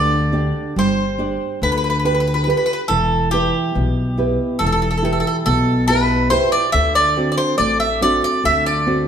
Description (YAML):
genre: greek folk, Greek bouzouki band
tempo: 140 BPM (eighths)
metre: 9/8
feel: straight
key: G major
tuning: A4 = 443 Hz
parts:
  - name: Greek bouzouki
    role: melody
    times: 0.0-9.1 s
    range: G4 to E5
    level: -18 LUFS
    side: equal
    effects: none
  - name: nylon-string guitar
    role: accompaniment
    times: 0.0-9.1 s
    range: B2 to D5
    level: -20 LUFS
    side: right 2 dB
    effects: none
  - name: upright bass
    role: bass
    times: 0.0-9.1 s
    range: E1 to D2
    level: -22 LUFS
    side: left 1 dB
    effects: none
room: wet stone room reverb, RT60 1.2 s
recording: band playing live in one room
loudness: -15 LUFS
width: side -8 dB against mid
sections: 0.0-9.1 A section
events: none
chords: 0.0 G; 2.9 Em; 6.7 D7